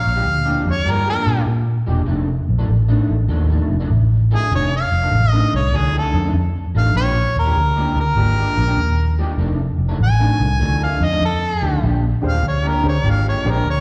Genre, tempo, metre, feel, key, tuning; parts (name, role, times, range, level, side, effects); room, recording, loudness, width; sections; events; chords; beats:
electric blues shuffle; 99 BPM; 4/4; swing 68% on 8ths; A4 = 440 Hz
mellow harmonica; melody; 0.0-13.8 s; Ab4 to Ab5; -23 LUFS; equal; overdrive, slapback echo
vintage muted fingered electric bass; bass; 0.1-13.8 s; E1 to Bb2; -19 LUFS; equal
electric guitar through a small old amp; riff; 0.2-13.7 s; F2 to G4; -27 LUFS; equal; analog chorus, slapback echo
clear upright piano; accompaniment; 12.2-13.6 s; D4 to C5; -28 LUFS; equal; slapback echo
small room ambience; live gig heard through the venue's PA, recital hall reverb; -18 LUFS; mono
0.0-11.8 A section; 11.8-13.8 B section
harmonica solo 0.0-11.8
0.0 Bb6; 2.1 F6; 6.9 Bb6; 9.4 F6; 11.8 Bb13
0.26 0.87 1.48 | 2.08 2.69 3.30 3.90 | 4.51 5.12 5.73 6.34 | 6.95 7.55 8.16 8.77 | 9.38 9.99 10.60 11.21 | 11.82 12.43 13.04 13.65